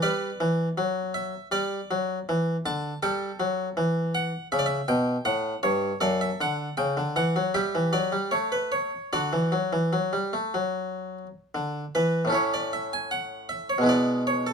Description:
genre	classical, baroque-style suite movement for harpsichord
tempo	74-81 BPM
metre	4/4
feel	rubato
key	D major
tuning	A4 = 442 Hz
part	harpsichord	solo	0.0-14.5 s	F#2 to A5	-24 LUFS	equal	none
room	light reverb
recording	dark, warm production, faint mains hum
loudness	-24 LUFS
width	side -6 dB against mid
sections	0.0-12.3 A section; 12.3-14.5 A section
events	none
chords	0.0 G; 3.0 A7; 6.0 D/F#; 7.5 Em; 8.3 N.C.; 9.1 D; 12.3 A; 13.9 E/B

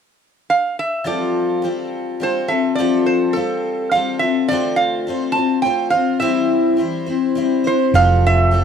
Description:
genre	acoustic folk duo or small band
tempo	104 BPM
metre	3/4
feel	straight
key	F major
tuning	A4 = 444 Hz
part	metal-body resonator slide guitar	melody	0.5-8.6 s	A4 to A5	-19 LUFS	right 4 dB	none
part	picked twelve-string acoustic guitar	accompaniment	1.0-8.6 s	D3 to C5	-18 LUFS	left 3 dB	none
part	hollow-body short-scale fingered electric bass	bass	7.9-8.6 s	F1	-14 LUFS	right 2 dB	none
room	little or no reverb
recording	dry, close 1970s-style studio recording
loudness	-15 LUFS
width	side -7 dB against mid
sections	0.0-1.0 A section; 1.0-8.0 B section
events	none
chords	0.0 N.C.; 1.0 Fadd9; 4.5 Dm7; 6.2 C/E; 8.0 Fadd9

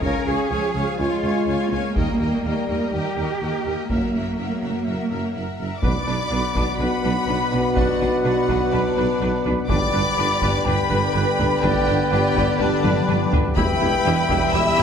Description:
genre	cinematic, epic orchestral film score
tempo	124 BPM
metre	4/4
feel	straight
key	B minor from 5.8 s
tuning	A4 = 440 Hz
part	warm symphonic violin section	melody	0.0-14.8 s	D5 to E6	-29 LUFS	left 4 dB	none
part	warm symphonic violin section	second line	0.0-14.8 s	D4 to E#5	-30 LUFS	left 4 dB	none
part	rich symphonic viola section	accompaniment	0.0-14.8 s	D4 to C#5	-31 LUFS	equal	none
part	mellow French horn section	sustained chords	0.0-14.8 s	E#3 to G4	-29 LUFS	left 5 dB	none
part	mellow tuba	bass	0.0-14.8 s	E1 to D#2	-28 LUFS	right 3 dB	none
part	rich studio double bass section	bass	0.0-14.8 s	E1 to F#2	-29 LUFS	right 2 dB	none
part	warm symphonic cello section	bass	0.0-14.8 s	E2 to A#4	-27 LUFS	right 3 dB	none
part	taiko ensemble	drums	0.0-14.8 s	none	-26 LUFS	equal	none
part	bright concert flute	second line	5.8-14.8 s	B4 to B5	-28 LUFS	left 2 dB	none
part	clear trombone section	sustained chords	5.8-14.8 s	B2 to G3	-27 LUFS	right 3 dB	none
part	mellow woodwind section	sustained chords	5.8-14.8 s	B3 to G5	-30 LUFS	left 2 dB	none
part	dark trumpet section	stabs	5.8-14.8 s	B4 to E5	-27 LUFS	left 1 dB	none
room	moderate scoring stage reverb, RT60 1.5 s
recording	none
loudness	-18 LUFS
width	side -7 dB against mid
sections	0.0-5.8 A section; 5.8-14.8 B section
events	drum fill 12.8-13.6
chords	0.0 C#; 2.0 D#; 3.9 F#7; 5.8 Bm; 9.7 G; 13.6 Em

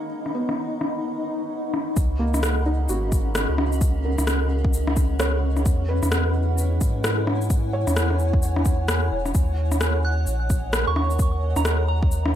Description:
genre	future garage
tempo	130 BPM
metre	4/4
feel	swing 61% on 16ths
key	unclear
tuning	A4 = 440 Hz
part	felt-muted upright piano	accompaniment	0.0-12.4 s	A#3 to C#5	-32 LUFS	right 2 dB	sidechain pumping, dub echo
part	granular cloud pad	sustained chords	0.0-12.4 s	C#4 to B5	-29 LUFS	equal	built-in reverb, sidechain pumping
part	drifting glass-harmonics texture	texture	0.0-2.0 s	C#4 to C#5	-47 LUFS	left 2 dB	none
part	electronic rim click and shaker	drums	0.3-12.3 s	none	-26 LUFS	left 1 dB	overdrive, low-pass filter on snare, low-pass filter on perc, low-pass filter on room
part	warm sub bass	bass	2.0-12.4 s	E1 to G#2	-23 LUFS	equal	sidechain pumping
part	electronic kick drum	drums	2.0-12.1 s	none	-21 LUFS	equal	overdrive
part	soft synth bell	melody	10.0-12.1 s	A#5 to F#6	-30 LUFS	right 4 dB	chorus, phaser, tape echo
room	light reverb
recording	echo-heavy mix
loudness	-20 LUFS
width	side -10 dB against mid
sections	0.0-2.0 A section; 2.0-12.4 B section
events	none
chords	0.0 G#m7; 5.7 E6; 9.3 D#m7

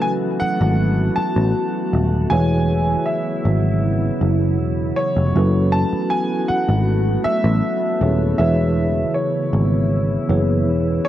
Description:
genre	contemporary R&B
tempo	79 BPM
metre	4/4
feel	straight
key	F# minor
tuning	A4 = 439 Hz
part	clear grand piano	melody	0.0-11.1 s	C#5 to A5	-24 LUFS	equal	cassette tape, analog delay
part	mellow tine electric piano	accompaniment	0.0-11.1 s	E3 to C#5	-23 LUFS	equal	medium stereo tremolo, cassette tape
part	glassy FM pad	sustained chords	0.0-11.1 s	C#3 to F#4	-24 LUFS	equal	ensemble chorus, built-in reverb, cassette tape
part	picked electric bass	bass	0.4-11.0 s	D#1 to A1	-18 LUFS	equal	none
room	light reverb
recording	home recording on cassette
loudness	-16 LUFS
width	side -12 dB against mid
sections	0.0-11.1 A section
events	none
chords	0.0 F#m11; 2.3 C#m7/E; 5.3 F#m11; 8.4 C#m7/E

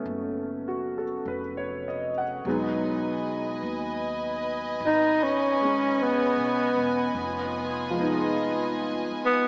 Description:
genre	jazz ballad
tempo	51 BPM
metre	4/4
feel	swing 68% on 8ths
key	unclear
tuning	A4 = 440 Hz
part	clear grand piano	accompaniment	0.0-9.5 s	F3 to F#5	-32 LUFS	equal	analog chorus
part	upright bass	bass	0.0-9.1 s	E1 to D#2	-43 LUFS	equal	none
part	rich chamber string section	sustained chords	2.5-9.5 s	F4 to G#5	-33 LUFS	equal	none
part	breathy tenor saxophone	melody	4.9-9.5 s	B3 to D#4	-27 LUFS	equal	analog delay
room	wet lush hall reverb, RT60 3.0 s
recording	dreamy mix soaked in reverb, small speaker sound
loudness	-27 LUFS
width	mono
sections	0.0-9.5 A section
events	tenor saxophone solo 0.0-9.5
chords	0.0 B7; 2.5 Emaj7; 7.2 Fm7b5

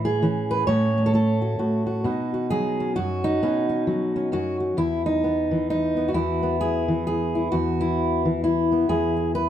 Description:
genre	folk, solo fingerstyle acoustic guitar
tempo	132 BPM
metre	3/4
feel	swing 61% on 8ths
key	E major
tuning	A4 = 440 Hz
part	fingerpicked steel-string acoustic guitar	solo	0.0-9.5 s	E2 to C#5	-21 LUFS	equal	none
room	wet small room reverb, RT60 0.6 s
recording	heard from further back in the room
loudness	-21 LUFS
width	side -10 dB against mid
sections	0.0-4.8 A section; 4.8-9.5 B section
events	none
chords	0.0 Amaj7; 0.7 F#m/A; 2.0 Badd9; 4.8 E

